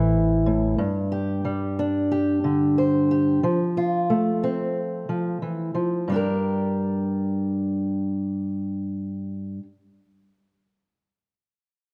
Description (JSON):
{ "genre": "folk", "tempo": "91 BPM", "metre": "4/4", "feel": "straight", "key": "G dorian", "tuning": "A4 = 440 Hz", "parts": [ { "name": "fingerpicked old ladder-braced acoustic guitar", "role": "accompaniment", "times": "0.0-9.7 s", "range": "G2 to C5", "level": "-24 LUFS", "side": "equal", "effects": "none" }, { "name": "upright bass", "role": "bass", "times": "0.0-0.7 s", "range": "A1", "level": "-27 LUFS", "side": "equal", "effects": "none" } ], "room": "moderate scoring stage reverb, RT60 1.6 s", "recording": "none", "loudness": "-24 LUFS", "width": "mono", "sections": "0.0-6.1 A section; 6.1-8.7 B section", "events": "none", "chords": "0.0 Am; 0.8 G5; 3.4 F; 6.1 Gm", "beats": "0.13 | 0.79 1.45 2.11 2.77 | 3.44 4.10 4.76 5.42 | 6.08 6.74 7.40 8.07" }